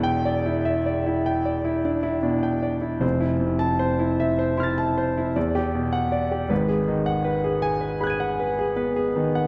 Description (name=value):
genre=classical, impressionist solo piano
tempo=52 BPM (dotted quarters)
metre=9/8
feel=rubato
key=unclear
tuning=A4 = 436 Hz
part: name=warm concert grand piano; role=solo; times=0.0-9.5 s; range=E1 to D#7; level=-24 LUFS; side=equal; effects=none
room=moderate concert hall reverb, RT60 1.8 s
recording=none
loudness=-24 LUFS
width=mono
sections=0.0-9.5 A section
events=none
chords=0.0 Em7; 3.0 Fmaj7; 5.4 Em9; 6.5 G#m7